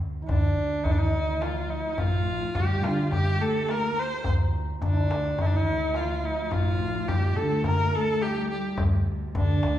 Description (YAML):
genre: Persian modal ensemble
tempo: 106 BPM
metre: 4/4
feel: straight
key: D dastgah shur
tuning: A4 = 440 Hz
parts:
  - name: santur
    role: second line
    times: 0.0-9.8 s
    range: D4 to C5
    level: -35 LUFS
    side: equal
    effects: none
  - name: upright bass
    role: bass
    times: 0.0-9.8 s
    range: A1 to D3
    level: -29 LUFS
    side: equal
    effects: none
  - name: dark cello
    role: drone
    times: 0.0-9.8 s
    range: D2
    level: -40 LUFS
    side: left 1 dB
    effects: none
  - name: tombak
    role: percussion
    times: 0.0-9.8 s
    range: none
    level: -27 LUFS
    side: left 1 dB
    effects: none
  - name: dark chamber cello section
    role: second line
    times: 0.2-9.8 s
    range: D3 to Bb3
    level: -34 LUFS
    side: left 2 dB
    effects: none
  - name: clear kamancheh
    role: melody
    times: 0.3-9.8 s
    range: D4 to C5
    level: -28 LUFS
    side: right 1 dB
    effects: none
room: wet large studio reverb, RT60 1.2 s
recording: band playing live in one room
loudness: -23 LUFS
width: side -12 dB against mid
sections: 0.0-9.8 A section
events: none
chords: none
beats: 0.28 0.85 1.42 | 1.99 2.55 3.12 3.69 | 4.25 4.82 5.39 5.96 | 6.52 7.09 7.66 8.22 | 8.79 9.36